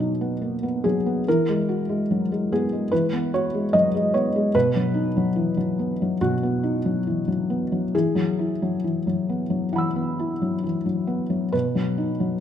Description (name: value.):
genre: neoclassical minimalist piano.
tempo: 65-74 BPM.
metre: 4/4.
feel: rubato.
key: unclear.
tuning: A4 = 439 Hz.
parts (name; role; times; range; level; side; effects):
felt-muted upright piano; solo; 0.0-12.4 s; B2 to E6; -21 LUFS; left 1 dB; none.
room: moderate scoring stage reverb, RT60 1.9 s.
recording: minimal, uncompressed stereo recording.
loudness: -21 LUFS.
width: side -9 dB against mid.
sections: 0.0-12.4 A section.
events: none.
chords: 0.0 B; 1.3 Eadd9; 4.5 B; 7.9 Eadd9; 11.5 B.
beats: 0.41 | 1.26 2.09 2.91 3.73 | 4.54 5.37 6.20 7.05 | 7.93 8.83 9.73 10.62 | 11.53.